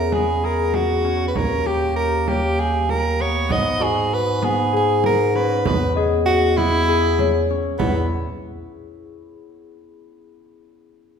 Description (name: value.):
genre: contemporary instrumental, chamber music in an uneven meter.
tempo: 195 BPM (eighths).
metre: 7/8.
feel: straight.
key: E lydian.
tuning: A4 = 441 Hz.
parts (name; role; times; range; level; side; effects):
clear soprano saxophone; melody; 0.0-8.1 s; B3 to D#5; -21 LUFS; right 4 dB; none.
concert harp; arpeggios; 0.0-8.1 s; A#3 to G5; -23 LUFS; left 6 dB; none.
mellow bass clarinet; bass; 0.0-8.1 s; D#2 to G#2; -23 LUFS; equal; none.
small celesta; texture; 0.0-9.9 s; B4 to E5; -30 LUFS; left 2 dB; none.
frame drum; percussion; 0.1-8.1 s; none; -28 LUFS; right 5 dB; none.
room: wet recital hall reverb, RT60 1.6 s.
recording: recorded in a church or concert hall.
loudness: -17 LUFS.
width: side -7 dB against mid.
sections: 0.0-7.8 A section; 7.8-9.9 B section.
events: none.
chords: 0.0 E6; 1.4 D#7; 3.5 G#m7; 5.7 Emaj7; 7.8 E5.